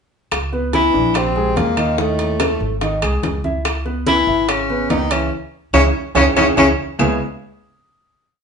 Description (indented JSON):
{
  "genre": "Afro-Cuban jazz",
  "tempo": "144 BPM",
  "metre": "4/4",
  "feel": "straight",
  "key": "C# minor",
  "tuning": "A4 = 440 Hz",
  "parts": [
    { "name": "upright bass", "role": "bass", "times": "0.3-7.2 s", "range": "G#1 to D#2", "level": "-23 LUFS", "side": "equal", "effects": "none" },
    { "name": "bongos", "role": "percussion", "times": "0.3-7.1 s", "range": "none", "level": "-27 LUFS", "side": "left 5 dB", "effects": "none" },
    { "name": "claves", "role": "percussion", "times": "0.3-7.1 s", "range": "none", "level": "-28 LUFS", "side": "left 4 dB", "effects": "none" },
    { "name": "congas", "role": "percussion", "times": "0.3-7.1 s", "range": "none", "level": "-25 LUFS", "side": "equal", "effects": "none" },
    { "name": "timbales", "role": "percussion", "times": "0.3-7.1 s", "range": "none", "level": "-24 LUFS", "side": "right 3 dB", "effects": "none" },
    { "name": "warm baby grand piano", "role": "accompaniment", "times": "0.5-7.2 s", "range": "C#3 to E5", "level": "-22 LUFS", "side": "right 2 dB", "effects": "none" },
    { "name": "mellow tenor saxophone", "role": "melody", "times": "0.7-6.7 s", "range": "A3 to E4", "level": "-18 LUFS", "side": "equal", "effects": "none" },
    { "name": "warm baritone saxophone", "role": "second line", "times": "0.7-6.7 s", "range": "A2 to E3", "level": "-23 LUFS", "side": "left 4 dB", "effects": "none" }
  ],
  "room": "wet studio reverb, RT60 0.7 s",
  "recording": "band playing live in one room, nothing above 10.7 kHz",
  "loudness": "-15 LUFS",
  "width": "side -6 dB against mid",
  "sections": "0.3-7.0 A section; 7.0-8.4 final chord",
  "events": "band accent 5.3-7.0",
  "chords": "0.3 C#m7; 1.2 A#7; 2.0 G#5; 2.8 G#; 3.7 C#m7",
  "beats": "| 0.32 0.73 1.15 1.57 | 1.99 2.40 2.82 3.23 | 3.65 4.07 4.49 4.90 | 5.32 5.74 6.16 6.57 | 6.99"
}